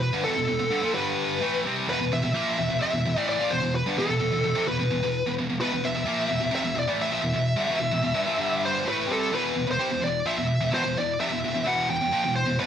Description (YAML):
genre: metal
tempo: 129 BPM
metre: 4/4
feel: straight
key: E minor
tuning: A4 = 440 Hz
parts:
  - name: high-gain lead guitar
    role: melody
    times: 0.0-12.7 s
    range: A4 to G5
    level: -26 LUFS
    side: equal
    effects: distortion, slapback echo
  - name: scooped high-gain guitar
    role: riff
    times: 0.0-12.7 s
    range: E2 to C4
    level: -26 LUFS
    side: equal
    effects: distortion
room: digital ambience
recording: dry, close 1970s-style studio recording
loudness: -23 LUFS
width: side -9 dB against mid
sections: 0.0-9.3 A section; 9.3-12.7 B section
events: none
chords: 0.0 Em; 0.9 G5; 1.4 E5; 8.4 G5; 8.9 Em; 9.3 E5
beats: | 0.01 0.48 0.94 1.41 | 1.88 2.34 2.81 3.27 | 3.74 4.20 4.67 5.13 | 5.60 6.06 6.53 6.99 | 7.46 7.92 8.39 8.86 | 9.32 9.79 10.25 10.72 | 11.18 11.65 12.11 12.58